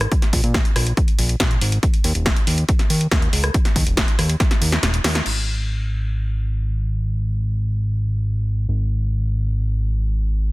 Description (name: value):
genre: uplifting trance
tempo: 140 BPM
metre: 4/4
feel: straight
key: unclear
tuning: A4 = 445 Hz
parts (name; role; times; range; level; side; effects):
- fat analog bass; bass; 0.0-10.5 s; D#1 to A#2; -20 LUFS; equal; sidechain pumping
- punchy analog drum machine; drums; 0.0-5.3 s; crash cymbal, hi-hat, rim click, snare drum; -22 LUFS; equal; sidechain pumping on hats, sidechain pumping on cymbals
- electronic kick drum; drums; 0.1-4.5 s; none; -18 LUFS; equal; overdrive
room: little or no reverb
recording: dense, heavily limited modern master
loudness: -17 LUFS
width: side -21 dB against mid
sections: 0.0-5.3 A section; 5.3-10.5 B section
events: drum fill 4.4-5.3; kick drops out 4.8-5.3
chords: none